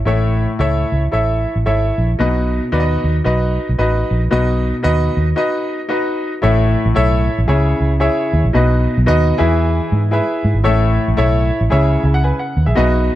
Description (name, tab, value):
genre	uptempo 1960s-style soul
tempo	114 BPM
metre	4/4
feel	swing 60% on 8ths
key	unclear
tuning	A4 = 440 Hz
part	clear grand piano	accompaniment	0.1-13.2 s	A2 to G#5	-17 LUFS	left 1 dB	none
part	vintage muted fingered electric bass	bass	0.1-13.1 s	G#1 to G#2	-15 LUFS	equal	none
room	light reverb, small room ambience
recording	dark, warm production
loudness	-13 LUFS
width	side -14 dB against mid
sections	0.0-6.4 A section; 6.4-13.2 B section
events	break 5.4-6.4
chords	0.0 A; 2.2 B; 6.4 A; 7.5 C#m; 8.5 B; 9.3 E; 10.7 A; 11.7 C#m